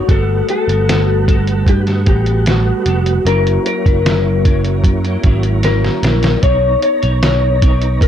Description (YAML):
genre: indie pop, bedroom pop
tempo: 76 BPM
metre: 4/4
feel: straight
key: unclear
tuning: A4 = 444 Hz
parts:
  - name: electric slide guitar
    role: melody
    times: 0.0-8.1 s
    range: F#4 to C#5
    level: -18 LUFS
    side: left 4 dB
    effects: wide subtle chorus, slapback echo, plate reverb
  - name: mellow tonewheel organ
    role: accompaniment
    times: 0.0-8.1 s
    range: G3 to A#5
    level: -23 LUFS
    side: right 7 dB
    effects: chorus vibrato, fast rotary speaker, cassette tape, plate reverb
  - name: semi-hollow electric guitar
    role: accompaniment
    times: 0.0-8.1 s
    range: F#3 to C#5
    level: -22 LUFS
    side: left 4 dB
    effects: ensemble chorus, warbly pitch drift, plate reverb
  - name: picked electric bass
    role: bass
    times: 0.1-8.1 s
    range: E#1 to B2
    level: -15 LUFS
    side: right 1 dB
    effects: none
  - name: lo-fi sampler-style drum kit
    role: drums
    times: 0.1-8.1 s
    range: hi-hat, kick drum, snare drum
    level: -15 LUFS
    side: right 1 dB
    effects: none
room: light reverb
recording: dark, warm production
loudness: -11 LUFS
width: side -10 dB against mid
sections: 0.0-8.1 A section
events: drum fill 5.6-6.4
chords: 0.1 Gmaj9; 3.3 F#7; 6.4 Bmaj9